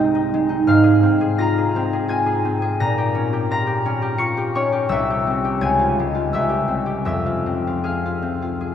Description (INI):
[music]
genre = classical, solo harp piece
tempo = 84 BPM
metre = 3/4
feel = uneven beats, rubato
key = F minor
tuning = A4 = 440 Hz
[part]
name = concert harp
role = solo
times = 0.0-8.7 s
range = C2 to Db7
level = -17 LUFS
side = equal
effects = none
[sound]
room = wet cathedral reverb, RT60 5.7 s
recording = recorded in a church or concert hall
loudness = -17 LUFS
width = side -8 dB against mid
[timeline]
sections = 0.0-8.7 A section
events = none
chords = 0.0 Ab/C; 0.7 Fm/Ab; 2.8 Gm7b5/Bb; 4.9 C7; 5.6 Db; 6.3 C; 7.1 Fm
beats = 0.01 | 0.69 1.42 2.11 | 2.81 3.51 4.20 | 4.89 5.62 6.34 | 7.09 7.87 8.64